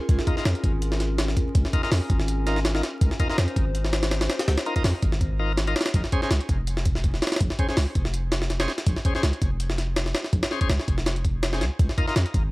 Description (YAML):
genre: drum and bass, jungle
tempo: 164 BPM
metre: 4/4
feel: swing 54% on 16ths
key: Bb minor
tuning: A4 = 440 Hz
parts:
  - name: warbly tape-like pad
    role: sustained chords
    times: 0.0-5.9 s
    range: Db4 to C5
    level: -33 LUFS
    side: left 1 dB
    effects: chorus, built-in reverb
  - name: long sustained 808-style bass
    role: bass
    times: 0.1-12.5 s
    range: F1 to F2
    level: -25 LUFS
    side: equal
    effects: none
  - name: jungle sampler-style drum kit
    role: drums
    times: 0.1-12.4 s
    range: hi-hat, kick drum, snare drum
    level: -24 LUFS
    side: equal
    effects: small room ambience
  - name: bright tonewheel organ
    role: stabs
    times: 0.3-12.2 s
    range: Db4 to C5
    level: -31 LUFS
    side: left 1 dB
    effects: overdrive, slow rotary speaker, dub echo
room: little or no reverb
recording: dry, gritty hardware recording, vinyl crackle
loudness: -22 LUFS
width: side -21 dB against mid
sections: 0.0-5.9 A section; 5.9-12.5 A section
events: drop 0.0-5.9, 5.9-12.5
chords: 0.1 Db6; 5.9 Bbm7 (rootless); 11.8 Db6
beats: | 0.09 0.45 0.82 1.19 | 1.55 1.92 2.28 2.65 | 3.02 3.38 3.75 4.11 | 4.48 4.84 5.21 5.58 | 5.94 6.31 6.67 7.04 | 7.41 7.77 8.14 8.50 | 8.87 9.23 9.60 9.97 | 10.33 10.70 11.06 11.43 | 11.80 12.16